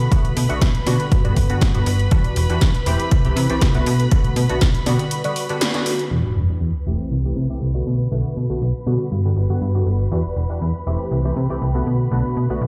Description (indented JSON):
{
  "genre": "filtered disco house",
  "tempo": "120 BPM",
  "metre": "4/4",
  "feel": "straight",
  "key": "E minor",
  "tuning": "A4 = 440 Hz",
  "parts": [
    { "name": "funky polysynth comp", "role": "accompaniment", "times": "0.0-12.6 s", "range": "D3 to G4", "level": "-27 LUFS", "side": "equal", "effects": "chorus, phaser, sidechain pumping, low-pass filter" },
    { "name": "rich studio violin section", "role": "sustained chords", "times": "0.0-12.7 s", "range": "B4 to B5", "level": "-32 LUFS", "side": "equal", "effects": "sidechain pumping, low-pass filter" },
    { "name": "slap-like FM bass", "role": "bass", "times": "0.0-12.7 s", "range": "E1 to C3", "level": "-22 LUFS", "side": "equal", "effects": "sidechain pumping, low-pass filter" },
    { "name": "punchy analog drum machine", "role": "drums", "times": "0.0-6.1 s", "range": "hi-hat, snare drum", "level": "-29 LUFS", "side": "equal", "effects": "overdrive, sidechain pumping on hats, low-pass filter on hats, low-pass filter on snare" },
    { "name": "electronic kick drum", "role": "drums", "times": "0.1-4.7 s", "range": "none", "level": "-19 LUFS", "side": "equal", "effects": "overdrive" },
    { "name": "sub drop", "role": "sound effects", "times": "6.1-8.1 s", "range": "none", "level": "-28 LUFS", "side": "equal", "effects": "none" }
  ],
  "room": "light reverb",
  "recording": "played on a big sound system in a bare room, large studio reverb",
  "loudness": "-19 LUFS",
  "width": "mono",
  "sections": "0.0-6.1 A section; 6.1-12.7 B section",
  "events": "break 5.1-6.1; band accent 5.6; impact 6.1-8.1",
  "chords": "0.0 Bm7; 1.1 Gmaj7; 2.1 Em9; 3.1 C6; 3.9 Bm7; 5.1 Gmaj7; 6.1 Em9; 7.1 C6; 7.9 Bm7; 9.1 Gmaj7; 10.1 Em9; 11.1 C6; 11.9 Bm7"
}